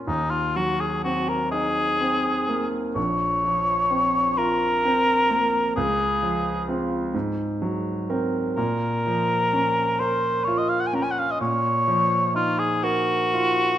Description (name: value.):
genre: classical, impressionist duo for cor anglais and grand piano.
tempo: 42 BPM (dotted quarters).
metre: 6/8.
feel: rubato.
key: Bb minor.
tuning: A4 = 440 Hz.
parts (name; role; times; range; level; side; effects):
clear concert grand piano; accompaniment; 0.0-13.8 s; Bb1 to Bb4; -25 LUFS; right 1 dB; none.
warm cor anglais; melody; 0.1-13.8 s; Eb4 to Ab5; -22 LUFS; left 1 dB; none.
room: moderate recital hall reverb, RT60 1.3 s.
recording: none.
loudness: -20 LUFS.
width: side -11 dB against mid.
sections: 0.0-13.8 A section.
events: none.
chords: 0.1 Ebm6; 3.0 Bbmadd9; 5.8 Dbmaj7; 7.1 Ab9; 8.6 Bbm; 11.4 Ebm9/Bb.